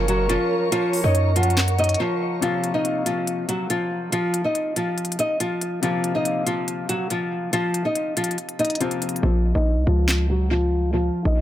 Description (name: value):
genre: hip hop, trap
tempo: 141 BPM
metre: 4/4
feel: half-time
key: Bb minor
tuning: A4 = 440 Hz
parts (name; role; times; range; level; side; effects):
- nylon-string guitar; melody; 0.0-11.4 s; F3 to Eb5; -23 LUFS; equal; low-pass filter, analog delay
- hollow clarinet-like synth lead; second line; 0.0-2.0 s; Bb4 to Gb5; -28 LUFS; right 4 dB; chorus, analog delay
- bright grand piano; accompaniment; 0.0-9.3 s; C3 to Bb4; -31 LUFS; left 5 dB; analog delay
- glassy FM pad; sustained chords; 0.0-2.4 s; Bb4 to Db6; -30 LUFS; equal; ensemble chorus, built-in reverb
- hard-hitting 808-style bass; bass; 0.0-2.0, 9.2-11.4 s; Gb1 to Gb2; -20 LUFS; equal; none
- trap drum kit; drums; 0.1-10.2 s; handclaps, hi-hat, snare drum; -27 LUFS; left 1 dB; analog delay
room: digital ambience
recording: echo-heavy mix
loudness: -20 LUFS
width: side -12 dB against mid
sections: 0.0-2.4 A section; 2.4-9.2 B section; 9.2-11.4 C section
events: break 2.0-2.4; kick muted 7.5-9.2; hi-hats muted 9.2-11.4; filter sweep on nylon-string guitar 9.2-11.4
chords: 0.0 Gb; 2.4 Bbsus2; 9.2 Bb5